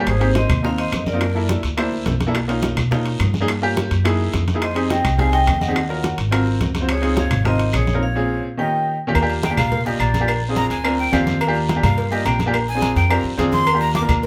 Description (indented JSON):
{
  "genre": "Afro-Cuban jazz",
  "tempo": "212 BPM",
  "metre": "4/4",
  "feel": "straight",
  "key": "Ab major, Eb major from 9.2 s",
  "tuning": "A4 = 440 Hz",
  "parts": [
    { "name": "clear baby grand piano", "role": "accompaniment", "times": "0.0-14.3 s", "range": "Bb2 to C5", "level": "-25 LUFS", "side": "equal", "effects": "none" },
    { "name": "vibraphone with medium hard mallets", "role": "melody", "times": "0.1-1.6, 4.6-9.0 s", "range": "C5 to Ab5", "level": "-27 LUFS", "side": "equal", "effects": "none" },
    { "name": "breathy bright jazz flute", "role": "second line", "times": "0.1-1.6, 4.6-14.0 s", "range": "Ab4 to D6", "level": "-28 LUFS", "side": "equal", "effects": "none" },
    { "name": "upright bass", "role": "bass", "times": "0.1-14.3 s", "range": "Ab1 to B2", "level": "-24 LUFS", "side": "equal", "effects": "none" },
    { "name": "bongos and cowbell", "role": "percussion", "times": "0.1-14.3 s", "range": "none", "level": "-32 LUFS", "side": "equal", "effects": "none" },
    { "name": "claves", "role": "percussion", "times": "0.1-14.2 s", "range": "none", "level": "-32 LUFS", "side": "equal", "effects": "none" },
    { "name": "congas", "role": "percussion", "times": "0.1-14.3 s", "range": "none", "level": "-28 LUFS", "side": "equal", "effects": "none" },
    { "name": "guiro", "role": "percussion", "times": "0.1-14.3 s", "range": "none", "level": "-38 LUFS", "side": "equal", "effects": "none" },
    { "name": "timbales and agogo bells", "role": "percussion", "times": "0.1-14.2 s", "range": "none", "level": "-29 LUFS", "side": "equal", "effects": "none" }
  ],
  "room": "moderate large studio reverb, RT60 0.8 s",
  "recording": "band playing live in one room",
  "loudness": "-19 LUFS",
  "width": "mono",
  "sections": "0.1-9.2 A section; 9.2-14.3 B section",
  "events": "break 8.0-9.2; flute solo 9.2-14.3",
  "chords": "0.1 Abmaj9; 1.2 Gb7alt; 2.3 Bmaj9#11; 3.5 Gm7b5; 4.1 Gb13; 4.6 Fm9; 5.8 Ebm7; 6.3 Ab13; 6.9 Dbmaj7; 8.0 Bbm9; 8.6 Eb7; 9.2 Ebmaj7; 10.3 Bb7; 11.4 Ebmaj7; 12.5 Bb7; 13.7 Ebmaj7"
}